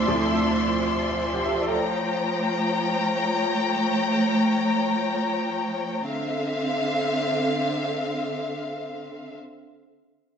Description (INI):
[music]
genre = amapiano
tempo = free time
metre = none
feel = none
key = D minor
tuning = A4 = 441 Hz
[part]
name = warm baby grand piano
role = accompaniment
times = 0.0-1.9 s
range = D2 to E5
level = -24 LUFS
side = right 2 dB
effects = ensemble chorus
[part]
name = dark studio string section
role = sustained chords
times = 0.0-9.4 s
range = D3 to C6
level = -23 LUFS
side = left 1 dB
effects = none
[sound]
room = wet plate reverb, RT60 1.7 s, small room ambience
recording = dreamy mix soaked in reverb, nothing above 8.0 kHz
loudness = -22 LUFS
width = side -7 dB against mid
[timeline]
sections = 0.0-6.1 A section; 6.1-10.4 B section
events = none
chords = 0.0 Dm9; 1.7 A7b9b13; 6.1 Dm9